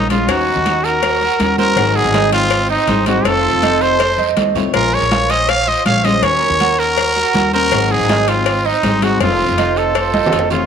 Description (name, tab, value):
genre	latin, Cuban son and guajira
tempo	161 BPM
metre	4/4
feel	straight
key	unclear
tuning	A4 = 440 Hz
part	growling trumpet	melody	0.0-10.7 s	Eb4 to F5	-16 LUFS	equal	none
part	dark studio violin section	second line	0.0-10.7 s	Bb3 to Db5	-24 LUFS	right 10 dB	none
part	fingerpicked steel-string acoustic guitar	accompaniment	0.0-10.7 s	C3 to Ab4	-23 LUFS	left 12 dB	none
part	Cuban tres	arpeggios	0.0-10.7 s	C4 to Db5	-21 LUFS	right 11 dB	none
part	upright bass	bass	0.0-10.7 s	F1 to F2	-22 LUFS	equal	none
part	congas	percussion	0.1-10.6 s	none	-21 LUFS	right 1 dB	none
part	cowbell	percussion	0.1-10.5 s	none	-23 LUFS	left 12 dB	none
part	guiro	percussion	0.1-10.7 s	none	-30 LUFS	right 11 dB	none
room	moderate echo chamber reverb, RT60 1.8 s, small room ambience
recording	1960s-style stereo with parts hard left and right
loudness	-12 LUFS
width	side -7 dB against mid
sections	0.0-10.7 A section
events	drum fill 10.1-10.7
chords	0.3 Ebm7; 1.8 Ab7; 3.3 F7; 4.7 Bbm7; 6.2 Ebm7; 7.7 Ab7; 9.2 F7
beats	| 0.29 0.66 1.03 1.40 | 1.77 2.14 2.51 2.88 | 3.25 3.63 4.00 4.37 | 4.74 5.12 5.49 5.86 | 6.23 6.61 6.98 7.35 | 7.72 8.09 8.46 8.84 | 9.21 9.58 9.95 10.32